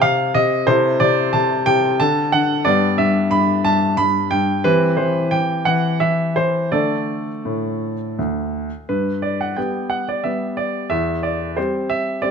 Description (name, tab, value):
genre	classical-period piano sonatina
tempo	82-92 BPM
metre	3/4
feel	rubato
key	G major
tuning	A4 = 442 Hz
part	clear baby grand piano	solo	0.0-12.3 s	D2 to B5	-16 LUFS	equal	none
room	moderate recital hall reverb, RT60 1.7 s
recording	close, detailed microphones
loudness	-16 LUFS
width	side -6 dB against mid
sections	0.0-8.9 A section; 8.9-12.3 B section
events	none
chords	0.0 Cm; 0.7 Am/C; 2.0 D; 2.7 G; 4.6 C/E; 6.7 D5; 8.9 G; 10.9 C/E